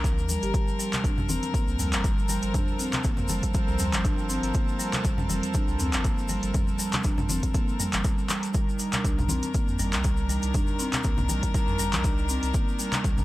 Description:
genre	afro house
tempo	120 BPM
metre	4/4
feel	swing 54% on 16ths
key	G minor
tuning	A4 = 441 Hz
part	rich chamber string section	sustained chords	0.0-13.2 s	Eb3 to Bb4	-33 LUFS	left 1 dB	sidechain pumping
part	marimba with medium mallets	arpeggios	0.0-13.2 s	F3 to G4	-31 LUFS	right 1 dB	sidechain pumping, analog delay
part	warm sub bass	bass	0.0-13.2 s	F1 to F2	-30 LUFS	equal	sidechain pumping
part	deep house drum kit	drums	0.0-13.2 s	handclaps, hi-hat, toms	-31 LUFS	equal	none
part	electronic kick drum	drums	0.0-13.2 s	none	-26 LUFS	equal	none
part	tube shaker	percussion	0.1-13.2 s	none	-36 LUFS	left 3 dB	none
part	congas	percussion	0.3-13.2 s	none	-35 LUFS	left 2 dB	none
room	small room ambience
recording	dry, gritty hardware recording, transformer saturation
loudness	-23 LUFS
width	side -17 dB against mid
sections	0.0-13.2 A section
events	none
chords	0.0 Cm9; 0.5 Gm11; 8.5 Cm9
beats	0.04 | 0.54 1.04 1.54 2.04 | 2.54 3.04 3.54 4.04 | 4.54 5.04 5.54 6.04 | 6.54 7.04 7.54 8.04 | 8.54 9.04 9.54 10.04 | 10.54 11.04 11.54 12.04 | 12.54 13.04

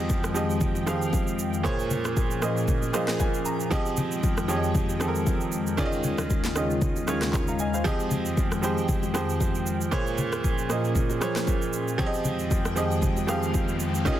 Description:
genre	amapiano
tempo	116 BPM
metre	4/4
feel	swing 55% on 16ths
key	F minor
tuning	A4 = 436 Hz
part	bright baby grand piano	accompaniment	0.0-14.2 s	Bb2 to Bb5	-27 LUFS	right 2 dB	none
part	airy breathy pad	sustained chords	0.0-14.2 s	Eb2 to G5	-30 LUFS	left 2 dB	chorus, sidechain pumping
part	afro-pop drum kit	drums	0.1-14.2 s	handclaps, kick drum, rim click, shaker, snare drum	-28 LUFS	equal	soft clipping on snare
part	bongos and congas	percussion	0.1-14.2 s	none	-33 LUFS	left 3 dB	none
part	riser	sound effects	13.2-14.2 s	none	-40 LUFS	left 2 dB	none
room	light reverb, digital ambience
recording	dense, heavily limited modern master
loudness	-23 LUFS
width	side -12 dB against mid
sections	0.0-14.2 A section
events	grand piano fill 2.7-3.7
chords	0.0 Fm9; 1.6 Bbm7; 3.7 Fm9; 5.8 Eb9sus4; 7.9 Fm9; 9.9 Bbm7; 12.0 Fm9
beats	0.10 0.61 1.13 | 1.65 2.17 2.68 3.20 | 3.72 4.23 4.75 5.27 | 5.79 6.30 6.82 7.34 | 7.85 8.37 8.89 9.41 | 9.92 10.44 10.96 11.47 | 11.99 12.51 13.03 13.54 | 14.06

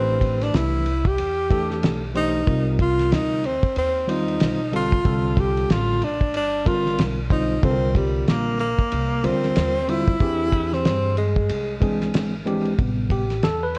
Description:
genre	hip hop, jazz-hop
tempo	93 BPM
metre	4/4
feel	swing 59% on 16ths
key	unclear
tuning	A4 = 440 Hz
part	breathy tenor saxophone	melody	0.0-12.1 s	G3 to G4	-26 LUFS	equal	slapback echo
part	tine electric piano	accompaniment	0.0-13.8 s	C3 to C5	-27 LUFS	equal	none
part	upright bass	bass	0.0-13.8 s	G1 to G2	-29 LUFS	equal	none
part	cloth-damped thuddy drum kit	drums	0.2-13.8 s	hi-hat, kick drum, ride cymbal, snare drum	-27 LUFS	equal	vintage 12-bit sampler grit
room	light reverb, small room ambience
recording	worn, warbling old tape, cassette tape, warbly pitch drift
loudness	-22 LUFS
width	mono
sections	0.0-12.8 A section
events	none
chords	0.0 Am11; 2.5 Cm11; 10.2 E7alt; 12.8 Am9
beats	0.54 1.18 1.82 | 2.47 3.12 3.76 4.41 | 5.05 5.70 6.34 6.99 | 7.63 8.28 8.92 9.57 | 10.21 10.86 11.50 12.15 | 12.79 13.44

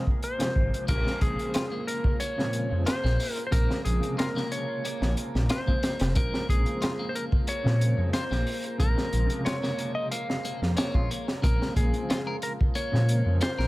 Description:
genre	trip hop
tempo	91 BPM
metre	4/4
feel	straight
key	Bb minor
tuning	A4 = 441 Hz
part	clean lap steel guitar	melody	0.0-13.7 s	Ab4 to F5	-32 LUFS	equal	tape echo
part	felt-muted upright piano	accompaniment	0.0-13.4 s	C3 to C4	-35 LUFS	equal	tremolo, vintage 12-bit sampler grit
part	deep dark ambient pad	sustained chords	0.0-13.7 s	Bb3 to Bb5	-40 LUFS	right 2 dB	chorus, built-in reverb
part	crunchy breakbeat drum kit	drums	0.1-13.7 s	crash cymbal, hi-hat, kick drum, snare drum	-28 LUFS	equal	none
part	dark detuned saw bass	bass	0.6-13.7 s	F1 to Bb2	-26 LUFS	equal	none
part	clean electric guitar	arpeggios	0.9-13.7 s	Bb3 to Bb4	-37 LUFS	left 3 dB	tape echo
room	studio ambience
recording	none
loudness	-24 LUFS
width	side -19 dB against mid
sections	0.9-13.7 A section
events	none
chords	0.0 Fm/Bb; 0.9 Bbm7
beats	0.22 | 0.88 1.54 2.20 2.86 | 3.52 4.18 4.84 5.50 | 6.16 6.82 7.48 8.13 | 8.79 9.45 10.11 10.77 | 11.43 12.09 12.75 13.41

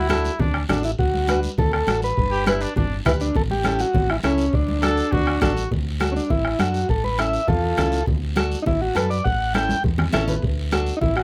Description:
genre	latin, cumbia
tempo	203 BPM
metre	4/4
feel	straight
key	D major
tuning	A4 = 441 Hz
part	overdriven combo organ	melody	0.0-11.2 s	C#4 to G5	-25 LUFS	equal	none
part	warm trumpet	second line	0.0-5.7 s	D4 to A4	-28 LUFS	equal	none
part	deep dub fingered electric bass	bass	0.0-11.2 s	G1 to F#2	-28 LUFS	equal	none
part	nylon-string guitar	accompaniment	0.1-10.9 s	C#4 to E5	-27 LUFS	equal	none
part	bombo	percussion	0.1-11.2 s	none	-27 LUFS	equal	none
part	congas	percussion	0.1-11.2 s	none	-31 LUFS	equal	none
part	guiro	percussion	0.1-11.2 s	none	-40 LUFS	equal	none
room	light reverb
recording	close, detailed microphones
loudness	-21 LUFS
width	mono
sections	0.0-5.7 A section; 5.7-11.2 B section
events	transistor combo organ solo 5.7-11.2; drum fill 9.7-10.4; nylon-string guitar fill 10.0-10.4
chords	0.0 D; 2.2 G; 3.4 A7; 4.5 D; 6.9 A; 8.1 D; 9.3 A7; 10.4 D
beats	0.10 0.40 0.69 | 0.99 1.29 1.58 1.88 | 2.17 2.47 2.77 3.06 | 3.36 3.65 3.95 4.24 | 4.54 4.83 5.13 5.42 | 5.72 6.01 6.31 6.60 | 6.90 7.19 7.49 7.78 | 8.08 8.37 8.67 8.96 | 9.26 9.55 9.84 10.14 | 10.43 10.73 11.02

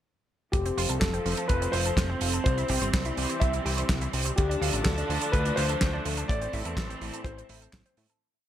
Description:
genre	italo disco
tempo	125 BPM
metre	4/4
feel	straight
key	unclear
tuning	A4 = 439 Hz
part	dark concert grand piano	melody	0.5-7.9 s	G4 to E5	-32 LUFS	left 2 dB	digital delay
part	rich studio string section	sustained chords	0.5-8.2 s	E3 to D4	-35 LUFS	right 2 dB	none
part	analog pluck	arpeggios	0.5-8.2 s	A3 to C5	-38 LUFS	right 2 dB	chorus, digital delay
part	fat analog bass	bass	0.5-8.1 s	F1 to A2	-31 LUFS	equal	tube saturation
part	damped 70s drum kit	drums	0.5-8.2 s	handclaps, hi-hat, snare drum	-32 LUFS	right 3 dB	small room reverb
part	kick drum	drums	0.5-7.8 s	none	-28 LUFS	equal	small room reverb
part	mellow synth brass	stabs	0.8-8.1 s	A2 to C5	-37 LUFS	equal	chorus
room	light reverb, studio ambience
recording	bright 1980s-style digital production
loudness	-25 LUFS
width	side -11 dB against mid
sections	0.5-8.2 chorus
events	fade-out 5.7-8.2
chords	0.5 F; 2.5 C; 4.4 Dm; 6.3 Am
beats	| 0.54 1.02 1.50 1.98 | 2.46 2.94 3.42 3.90 | 4.38 4.86 5.34 5.82 | 6.30 6.78 7.26 7.74

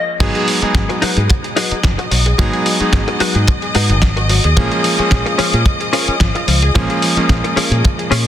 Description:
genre	nu-disco, nu disco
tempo	110 BPM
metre	4/4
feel	swing 54% on 16ths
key	G# dorian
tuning	A4 = 435 Hz
part	bright electric grand piano	accompaniment	0.0-8.3 s	E#3 to G#4	-20 LUFS	right 1 dB	sidechain pumping, tape echo
part	direct-recorded clean electric guitar	riff	0.0-8.3 s	C#4 to D#5	-21 LUFS	left 3 dB	ensemble chorus, tape echo
part	clear studio string section	sustained chords	0.2-8.3 s	D#5 to D#6	-22 LUFS	left 2 dB	vintage 12-bit sampler grit, sidechain pumping
part	analog pluck	arpeggios	0.2-8.2 s	E#3 to G#4	-25 LUFS	left 4 dB	chorus, sidechain pumping, tape echo
part	fingered electric bass with an envelope filter	bass	0.2-8.3 s	F#1 to A#2	-16 LUFS	equal	none
part	dusty soul sampler-style drum kit	drums	0.2-8.2 s	crash cymbal, hi-hat, snare drum	-20 LUFS	right 1 dB	none
part	kick drum	drums	0.2-8.0 s	none	-16 LUFS	equal	none
room	light reverb, small room reverb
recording	dense, heavily limited modern master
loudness	-12 LUFS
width	side -11 dB against mid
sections	0.2-8.3 A section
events	break 0.0; clean electric guitar fill 0.0; drop 0.2-8.3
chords	0.2 G#m7; 4.6 A#m7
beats	| 0.21 0.75 1.30 1.84 | 2.39 2.94 3.48 4.03 | 4.57 5.12 5.66 6.21 | 6.75 7.30 7.84

